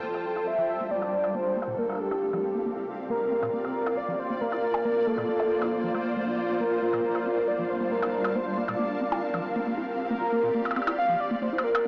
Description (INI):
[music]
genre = IDM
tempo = 137 BPM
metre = 4/4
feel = straight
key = Bb lydian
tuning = A4 = 441 Hz
[part]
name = warm velvety synth lead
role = melody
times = 0.0-11.9 s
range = G4 to F5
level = -30 LUFS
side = equal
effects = chorus, vintage 12-bit sampler grit, tape echo
[part]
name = granular cloud pad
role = sustained chords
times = 0.0-11.9 s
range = G3 to A5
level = -34 LUFS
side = equal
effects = built-in reverb
[part]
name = deep acid bass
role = arpeggios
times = 0.0-11.9 s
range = Bb2 to F4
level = -38 LUFS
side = equal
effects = subtle chorus, tape echo
[part]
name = electronic hi-hat and percussion blips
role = drums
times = 0.0-11.8 s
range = none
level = -35 LUFS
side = equal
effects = soft clipping on snare, low-pass filter on snare, low-pass filter on hats, low-pass filter on perc
[part]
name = flickering grainy texture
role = texture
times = 0.0-11.9 s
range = F4 to F5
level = -40 LUFS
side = equal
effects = built-in reverb
[sound]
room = wet digital room reverb, RT60 1.3 s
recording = blown-out, overdriven recording, overdrive, small speaker sound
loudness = -28 LUFS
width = mono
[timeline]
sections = 0.0-11.9 A section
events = filter sweep on acid bass 0.0-11.9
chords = 0.0 Bbmaj9; 10.1 Bbadd9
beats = 0.03 0.47 0.91 | 1.34 1.78 2.22 2.66 | 3.10 3.54 3.97 4.41 | 4.85 5.29 5.72 6.16 | 6.60 7.04 7.48 7.91 | 8.35 8.79 9.23 9.67 | 10.10 10.54 10.98 11.42 | 11.86